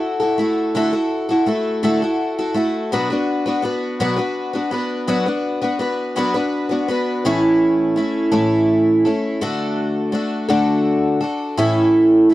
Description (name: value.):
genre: rock.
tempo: 55 BPM (dotted quarters).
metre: 6/8.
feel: straight.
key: unclear.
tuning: A4 = 440 Hz.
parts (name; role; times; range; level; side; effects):
picked twelve-string acoustic guitar; solo; 0.0-12.3 s; A2 to B4; -16 LUFS; equal; none.
room: little or no reverb.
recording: dry, close 1970s-style studio recording.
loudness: -16 LUFS.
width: side -15 dB against mid.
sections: 0.0-7.3 A section; 7.3-12.3 B section.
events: none.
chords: 0.0 Dadd9; 2.9 Bm; 7.3 A; 9.4 D; 11.6 A.